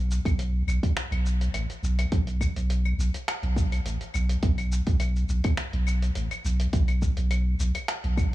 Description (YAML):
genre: organic downtempo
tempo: 104 BPM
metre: 4/4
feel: swing 54% on 16ths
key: unclear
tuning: A4 = 440 Hz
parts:
  - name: warm sub bass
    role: bass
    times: 0.0-8.3 s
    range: A1 to B1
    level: -24 LUFS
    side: equal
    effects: none
  - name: dusty soul sampler-style drum kit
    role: drums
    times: 0.1-8.3 s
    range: claves, finger snaps, hi-hat, shaker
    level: -34 LUFS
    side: left 1 dB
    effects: none
  - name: electronic kick drum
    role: drums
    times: 0.3-8.3 s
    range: none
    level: -26 LUFS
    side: equal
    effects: none
room: little or no reverb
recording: small room ambience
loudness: -24 LUFS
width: side -16 dB against mid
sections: 0.0-8.3 A section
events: none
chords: none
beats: 0.39 0.96 1.54 | 2.12 2.70 3.27 3.85 | 4.43 5.00 5.58 6.16 | 6.73 7.31 7.89